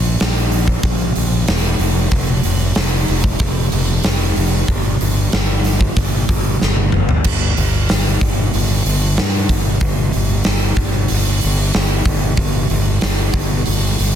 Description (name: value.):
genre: hard rock.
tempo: 94 BPM.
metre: 4/4.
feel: straight.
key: unclear.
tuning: A4 = 440 Hz.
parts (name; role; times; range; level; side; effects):
fuzz fingered electric bass; bass; 0.0-14.2 s; E1 to G2; -17 LUFS; equal; overdrive.
huge arena drum kit; drums; 0.2-14.1 s; crash cymbal, hi-hat, kick drum, snare drum, toms; -17 LUFS; equal; none.
room: little or no reverb.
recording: dense, heavily limited modern master.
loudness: -14 LUFS.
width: side -9 dB against mid.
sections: 0.0-7.3 A section; 7.3-14.2 B section.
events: drum fill 6.6-7.3.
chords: none.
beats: 0.20 0.84 1.48 | 2.13 2.77 3.41 4.05 | 4.69 5.33 5.97 6.61 | 7.25 7.90 8.54 9.18 | 9.82 10.46 11.10 11.74 | 12.39 13.03 13.67.